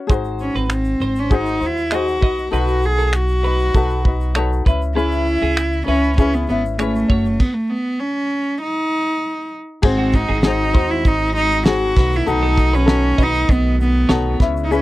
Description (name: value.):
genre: acoustic pop.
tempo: 98 BPM.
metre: 4/4.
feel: straight.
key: unclear.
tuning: A4 = 445 Hz.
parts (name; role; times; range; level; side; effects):
ukulele; accompaniment; 0.0-14.8 s; C#4 to C#5; -23 LUFS; left 5 dB; none.
twelve-string electric guitar; arpeggios; 0.1-14.5 s; F#4 to D#5; -28 LUFS; right 5 dB; none.
upright bass; bass; 0.1-14.8 s; F#1 to D#2; -21 LUFS; equal; none.
cloth-damped thuddy drum kit; drums; 0.1-14.8 s; crash cymbal, finger snaps, kick drum, shaker, snare drum; -16 LUFS; equal; none.
warm cello; melody; 0.4-14.8 s; A3 to G#4; -19 LUFS; equal; none.
pipe organ, foundations; sustained chords; 9.8-14.8 s; C#3 to F#4; -29 LUFS; equal; none.
room: little or no reverb.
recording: dry, close 1970s-style studio recording.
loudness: -15 LUFS.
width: side -17 dB against mid.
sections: 0.0-9.8 A section; 9.8-14.8 B section.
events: stop 7.4-9.8.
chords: 0.1 G#7; 2.2 B7; 4.7 C#m7; 7.1 F#5; 8.6 N.C.; 9.8 G#7; 12.0 B7.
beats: | 0.09 0.70 1.31 1.92 | 2.53 3.14 3.75 4.36 | 4.96 5.57 6.18 6.79 | 7.40 8.01 8.62 9.23 | 9.84 10.45 11.05 11.66 | 12.27 12.88 13.48 14.09 | 14.70.